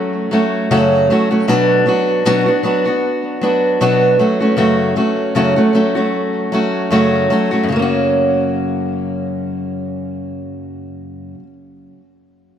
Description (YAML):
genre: pop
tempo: 77 BPM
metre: 4/4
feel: swing 55% on 16ths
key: F# minor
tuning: A4 = 441 Hz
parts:
  - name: fingerpicked steel-string acoustic guitar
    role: solo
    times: 0.0-11.5 s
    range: F#2 to F#4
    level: -14 LUFS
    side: equal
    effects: tape echo
room: moderate plate reverb, RT60 2.8 s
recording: none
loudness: -13 LUFS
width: side -9 dB against mid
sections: 0.0-7.7 A section; 7.7-10.8 B section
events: none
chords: 0.0 F#m; 1.5 Bm; 4.2 F#m; 7.7 F#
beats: 0.72 | 1.50 2.27 3.05 3.82 | 4.60 5.37 6.15 6.92 | 7.70 8.47 9.25 10.02